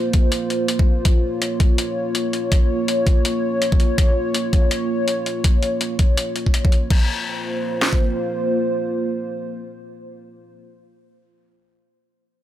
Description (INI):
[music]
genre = half-time drum and bass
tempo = 164 BPM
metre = 4/4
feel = swing 59% on 16ths, half-time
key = Bb minor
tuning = A4 = 440 Hz
[part]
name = dark analog pad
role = sustained chords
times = 0.0-10.6 s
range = Bb3 to Db5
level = -22 LUFS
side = equal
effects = chorus, sidechain pumping
[part]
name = boom bap sampler-style drum kit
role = drums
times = 0.1-7.0 s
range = crash cymbal, hi-hat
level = -25 LUFS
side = left 3 dB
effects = none
[part]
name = drum and bass drum kit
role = drums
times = 0.1-8.0 s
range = kick drum, snare drum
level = -16 LUFS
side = equal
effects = overdrive
[sound]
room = light reverb, digital ambience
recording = none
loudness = -17 LUFS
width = side -12 dB against mid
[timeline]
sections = 0.0-6.9 A section; 6.9-9.8 B section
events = none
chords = 0.0 Bbm; 6.9 Bb5